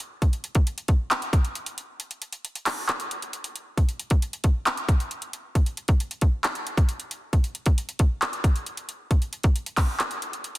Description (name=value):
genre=hip hop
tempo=135 BPM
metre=4/4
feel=half-time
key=none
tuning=none
part: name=trap drum kit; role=drums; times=0.0-10.6 s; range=handclaps, hi-hat, kick drum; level=-22 LUFS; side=equal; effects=none
room=light reverb, digital ambience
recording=dense, heavily limited modern master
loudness=-23 LUFS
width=side -18 dB against mid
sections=0.0-10.6 A section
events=break 2.0-3.8, 10.0-10.6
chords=none